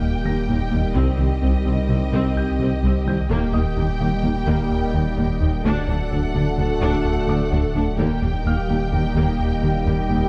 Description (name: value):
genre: cinematic, hybrid orchestral and electronic film score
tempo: 128 BPM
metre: 5/4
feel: straight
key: unclear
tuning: A4 = 440 Hz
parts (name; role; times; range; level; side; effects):
- clear symphonic violin section; melody; 0.0-10.3 s; Eb5 to G5; -36 LUFS; equal; none
- warm symphonic violin section; second line; 0.0-10.3 s; G4 to A4; -36 LUFS; equal; none
- mellow French horn section; sustained chords; 0.0-10.3 s; Bb3 to G4; -32 LUFS; equal; none
- phased analog pad; sustained chords; 0.0-10.3 s; F#3 to Eb5; -35 LUFS; equal; phaser, chorus
- warm trombone section; sustained chords; 0.0-10.3 s; D3 to A3; -33 LUFS; equal; none
- rubbery square bass; riff; 0.0-10.2 s; C2 to Eb3; -28 LUFS; equal; none
- saturated sub bass; bass; 0.0-10.3 s; D1 to C2; -28 LUFS; equal; none
- clear grand piano; texture; 0.0-10.3 s; A4 to Bb6; -40 LUFS; equal; delay
- warm symphonic viola section; accompaniment; 0.3-10.2 s; Bb3 to D4; -33 LUFS; equal; none
- resonant blip pluck; arpeggios; 0.3-10.2 s; C3 to Eb4; -34 LUFS; equal; none
- mellow tuba; bass; 0.3-10.2 s; C2 to Eb2; -32 LUFS; equal; none
- rich symphonic double bass section; bass; 0.3-10.2 s; C2 to Eb2; -30 LUFS; equal; none
- warm symphonic cello section; bass; 0.3-10.2 s; C2 to Eb2; -30 LUFS; equal; none
room: moderate scoring stage reverb, RT60 1.8 s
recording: dark, warm production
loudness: -21 LUFS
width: mono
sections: 0.0-10.3 A section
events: none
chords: 0.0 Eb; 1.0 Cm; 3.3 Eb; 5.6 D; 8.0 Eb